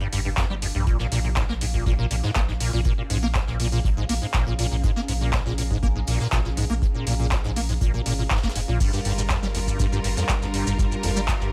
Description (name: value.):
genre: acid house.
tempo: 121 BPM.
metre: 4/4.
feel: straight.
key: unclear.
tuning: A4 = 440 Hz.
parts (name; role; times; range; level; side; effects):
acid bass, square; riff; 0.0-11.5 s; F2 to Bb3; -29 LUFS; equal; tube saturation, ensemble chorus, sidechain pumping.
warm sub bass; bass; 0.0-11.5 s; F1 to Bb1; -30 LUFS; equal; sidechain pumping.
soft brush drum kit; drums; 0.0-11.5 s; hi-hat, snare drum; -41 LUFS; equal; sidechain pumping on hats, high-pass filter on hats, high-pass filter on snare, high-pass filter on room.
granular cloud pad; texture; 0.1-11.5 s; Db4 to Bb5; -40 LUFS; equal; built-in reverb, sidechain pumping.
booming analog drum machine; drums; 0.1-11.5 s; crash cymbal, handclaps, hi-hat, shaker; -32 LUFS; equal; none.
electronic kick drum; drums; 0.4-11.4 s; none; -27 LUFS; equal; overdrive.
clear symphonic string section; sustained chords; 8.8-11.5 s; G3 to Bb4; -33 LUFS; equal; sidechain pumping.
room: light reverb.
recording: none.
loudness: -24 LUFS.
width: mono.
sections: 0.0-11.5 A section.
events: fade-in on ambient pad 0.0-11.5.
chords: 0.0 Gm7; 0.9 Bbm7; 8.8 Gm7.